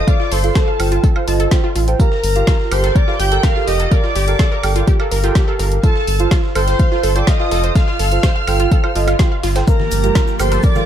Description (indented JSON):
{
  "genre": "progressive house",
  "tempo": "125 BPM",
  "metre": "4/4",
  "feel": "straight",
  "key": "G minor",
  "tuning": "A4 = 435 Hz",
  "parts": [
    { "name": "expressive synth lead", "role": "melody", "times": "0.0-10.9 s", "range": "A4 to G5", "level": "-22 LUFS", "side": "equal", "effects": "wide subtle chorus, tape echo" },
    { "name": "clear studio violin section", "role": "second line", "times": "0.0-10.9 s", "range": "A5 to G6", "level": "-28 LUFS", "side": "left 1 dB", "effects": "sidechain pumping, tape echo" },
    { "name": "deep mellow chord stab", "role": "stabs", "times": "0.0-10.8 s", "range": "F4 to G5", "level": "-22 LUFS", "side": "right 5 dB", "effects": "chorus, sidechain pumping, tape echo" },
    { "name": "round analog bass", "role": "bass", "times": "0.0-10.6 s", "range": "F1 to A1", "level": "-18 LUFS", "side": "equal", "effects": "sidechain pumping" },
    { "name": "wide unison pluck", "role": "arpeggios", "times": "0.1-10.9 s", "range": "F4 to C6", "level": "-24 LUFS", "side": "right 1 dB", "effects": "sidechain pumping, tape echo" },
    { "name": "breakbeat sampler-style drum kit", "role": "drums", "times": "0.1-10.9 s", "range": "hi-hat, snare drum, tambourine", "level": "-34 LUFS", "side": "right 1 dB", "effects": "none" },
    { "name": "deep house drum kit", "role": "drums", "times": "0.1-10.7 s", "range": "hi-hat, snare drum, woodblock", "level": "-25 LUFS", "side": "equal", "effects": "sidechain pumping on hats, sidechain pumping on perc" },
    { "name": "electronic kick drum", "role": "drums", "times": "0.1-10.7 s", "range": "none", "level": "-14 LUFS", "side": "equal", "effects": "overdrive" },
    { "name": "lush unison pad", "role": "sustained chords", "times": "9.7-10.9 s", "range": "F3 to G4", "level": "-24 LUFS", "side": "right 1 dB", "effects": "chorus, sidechain pumping" },
    { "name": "egg shaker", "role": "percussion", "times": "9.7-10.8 s", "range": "none", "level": "-34 LUFS", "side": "right 2 dB", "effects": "none" },
    { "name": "backwards swelling texture", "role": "texture", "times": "9.9-10.9 s", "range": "A6", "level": "-34 LUFS", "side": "right 3 dB", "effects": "none" },
    { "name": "electronic congas and rim click", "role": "percussion", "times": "9.8-10.9 s", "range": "none", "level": "-26 LUFS", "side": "right 6 dB", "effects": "sidechain pumping on perc, sidechain pumping on snare" }
  ],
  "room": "digital ambience",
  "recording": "dark, warm production",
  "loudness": "-13 LUFS",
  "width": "side -10 dB against mid",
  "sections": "0.0-10.9 A section",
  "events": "none",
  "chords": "0.0 F; 2.0 Gm9; 5.8 F; 9.7 Gm9"
}